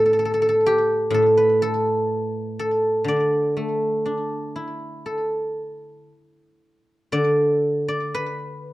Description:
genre	chinese traditional, Chinese solo plucked strings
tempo	57-63 BPM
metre	4/4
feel	rubato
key	D zhi mode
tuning	A4 = 440 Hz
part	guzheng	solo	0.0-8.7 s	A2 to D5	-19 LUFS	equal	slapback echo
room	light reverb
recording	dry, close 1970s-style studio recording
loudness	-19 LUFS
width	side -17 dB against mid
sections	0.0-7.1 A section; 7.1-8.7 B section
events	none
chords	none

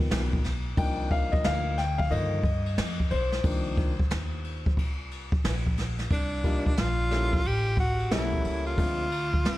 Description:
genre	hip hop, jazz-hop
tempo	90 BPM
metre	4/4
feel	swing 63% on 16ths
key	C minor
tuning	A4 = 440 Hz
part	dark baby grand piano	accompaniment	0.0-9.0 s	D3 to G5	-31 LUFS	left 3 dB	none
part	upright bass	bass	0.0-9.6 s	A1 to G2	-30 LUFS	equal	none
part	jazz brush drum kit	drums	0.1-9.6 s	hi-hat, kick drum, ride cymbal, snare drum	-28 LUFS	equal	none
part	breathy tenor saxophone	melody	6.1-9.6 s	D4 to G4	-29 LUFS	equal	analog delay
room	small room ambience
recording	vinyl crackle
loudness	-25 LUFS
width	side -16 dB against mid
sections	0.0-6.1 A section; 6.1-9.6 B section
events	grand piano solo 0.0-6.1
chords	0.0 Db13 (rootless); 0.8 Cm11; 7.4 A7b9; 8.8 Dm7b5

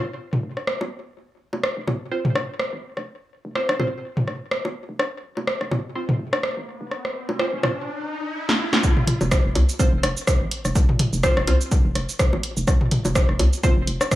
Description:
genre	minimal techno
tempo	125 BPM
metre	4/4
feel	swing 56% on 16ths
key	F minor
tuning	A4 = 440 Hz
part	wavetable chord stab	stabs	0.0-13.8 s	C4 to C5	-28 LUFS	right 1 dB	cassette tape, tape echo
part	hollow knocking FM bass	bass	0.0-14.0 s	Eb1 to C2	-24 LUFS	equal	sidechain pumping, high-pass filter
part	garage drum kit	percussion	0.3-14.1 s	bongos, rim click, toms	-24 LUFS	left 1 dB	overdrive, tape echo
part	punchy analog drum machine	drums	0.7-14.2 s	hi-hat, rim click, shaker, snare drum	-25 LUFS	equal	none
part	riser	sound effects	6.1-8.8 s	none	-32 LUFS	equal	none
part	electronic kick drum	drums	8.8-14.2 s	none	-20 LUFS	equal	none
room	light reverb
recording	small room ambience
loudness	-20 LUFS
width	side -15 dB against mid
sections	0.0-8.8 A section; 8.8-14.2 B section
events	riser 6.1-8.8; drum fill 8.5-8.8; drop 8.8-14.2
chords	0.0 F5

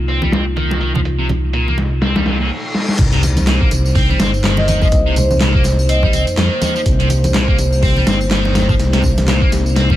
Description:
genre	breakbeat, breaks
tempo	124 BPM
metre	4/4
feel	swing 58% on 16ths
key	C minor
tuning	A4 = 441 Hz
part	dark analog pad	sustained chords	0.0-10.0 s	Bb3 to C5	-23 LUFS	equal	chorus, sidechain pumping
part	dark detuned saw bass	bass	0.0-10.0 s	G1 to F2	-16 LUFS	equal	tube saturation
part	distorted electric guitar	riff	0.1-10.0 s	Bb2 to C4	-22 LUFS	equal	distortion, vintage 12-bit sampler grit, low-pass filter, dub echo
part	dusty soul sampler-style drum kit	drums	0.1-10.0 s	crash cymbal, hi-hat, kick drum, snare drum	-17 LUFS	equal	overdrive, low-pass filter on hats, studio reverb, low-pass filter on snare, low-pass filter on cymbals, low-pass filter on kick
part	congas	percussion	0.2-10.0 s	none	-23 LUFS	right 1 dB	none
part	reverse cymbal and sub drop	sound effects	2.2-4.9 s	none	-25 LUFS	left 1 dB	none
part	electronic tambourine and handclaps	drums	3.0-9.9 s	none	-26 LUFS	equal	low-pass filter on perc, studio reverb, low-pass filter on snare, low-pass filter on room
part	vibraphone with soft mallets	melody	4.6-6.1 s	C5 to Eb5	-22 LUFS	equal	small speaker sound, dub echo
room	light reverb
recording	none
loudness	-12 LUFS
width	side -13 dB against mid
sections	0.0-3.0 A section; 3.0-10.0 B section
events	reverse cymbal 2.2-3.0; break 2.5-3.0; drum fill 2.7; drop 3.0-10.0; impact 3.0-4.9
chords	0.0 Cm7

